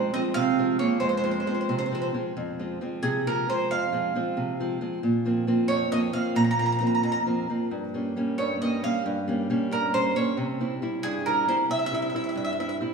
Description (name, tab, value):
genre	italian folk, Italian serenade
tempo	90 BPM (dotted quarters)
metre	6/8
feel	rubato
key	F minor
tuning	A4 = 440 Hz
part	bowl-back mandolin	melody	0.0-12.7 s	Ab4 to Bb5	-27 LUFS	right 3 dB	slapback echo
part	clear clarinet	second line	0.0-2.1 s	Ab3 to C4	-27 LUFS	right 6 dB	none
part	nylon-string guitar	accompaniment	0.0-12.9 s	F2 to E4	-26 LUFS	equal	none
room	wet concert hall reverb, RT60 1.9 s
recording	none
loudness	-24 LUFS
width	side -5 dB against mid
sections	0.0-2.4 A section; 2.4-12.9 B section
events	none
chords	0.0 Fm; 5.0 Bbsus2; 7.7 Gdim; 10.4 C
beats	0.36 | 1.01 1.69 | 2.36 3.03 | 3.70 4.37 | 5.03 5.69 | 6.35 7.02 | 7.70 8.38 | 9.05 9.71 | 10.38 11.04 | 11.70 12.36